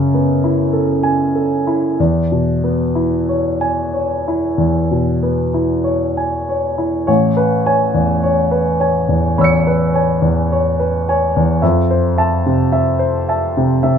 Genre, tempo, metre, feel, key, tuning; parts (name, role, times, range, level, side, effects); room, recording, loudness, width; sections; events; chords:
classical, impressionist solo piano; 46-55 BPM; 4/4; rubato; E major, A major from 7.1 s; A4 = 441 Hz
warm grand piano; solo; 0.0-14.0 s; A1 to C#7; -13 LUFS; equal
light reverb; minimal, uncompressed stereo recording; -14 LUFS; side -7 dB against mid
0.0-7.1 A section; 7.1-14.0 B section
0.0 F#m11; 2.0 E6; 7.1 Amaj9; 11.6 Fmaj7